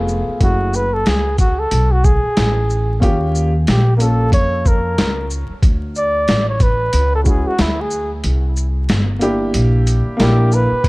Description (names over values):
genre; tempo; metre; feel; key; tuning
hip hop, jazz-hop; 92 BPM; 4/4; swing 58% on 16ths; unclear; A4 = 440 Hz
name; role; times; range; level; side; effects
dark upright piano; accompaniment; 0.0-10.7 s; G#3 to Bb4; -20 LUFS; equal; none
upright bass; bass; 0.0-10.9 s; E#1 to E#2; -17 LUFS; equal; none
trip hop sampler-style drum kit; drums; 0.1-10.9 s; crash cymbal, hi-hat, kick drum, shaker, snare drum; -16 LUFS; equal; none
breathy flugelhorn; melody; 0.4-10.9 s; E4 to D5; -20 LUFS; equal; none
room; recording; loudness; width
studio reverb; dark, warm production, vinyl crackle; -13 LUFS; side -23 dB against mid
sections
0.0-10.8 A section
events
flugelhorn solo 0.0-10.8; kick muted 8.2-10.8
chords
0.4 F#m9; 3.0 D#9; 5.6 Dmaj7(no3); 8.2 C9